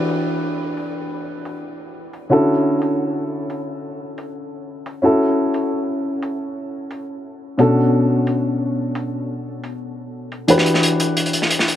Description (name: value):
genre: liquid drum and bass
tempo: 176 BPM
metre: 4/4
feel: straight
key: E dorian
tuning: A4 = 440 Hz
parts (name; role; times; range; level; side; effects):
- dark baby grand piano; accompaniment; 0.0-11.8 s; B2 to B4; -18 LUFS; left 1 dB; tape echo
- electronic hi-hat; drums; 0.1-11.8 s; none; -37 LUFS; equal; low-pass filter on hats, low-pass filter on perc, low-pass filter on snare, low-pass filter on room
- crunchy breakbeat drum kit; drums; 10.5-11.8 s; hi-hat, snare drum; -18 LUFS; equal; high-pass filter on hats, high-pass filter on snare, high-pass filter on room
room: moderate huge ambient reverb, RT60 8.2 s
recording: none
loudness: -17 LUFS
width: side -11 dB against mid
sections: 0.0-11.8 A section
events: none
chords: 0.0 Em7; 2.3 Dmaj9; 5.0 F#m7; 7.6 Bm7; 10.5 Em7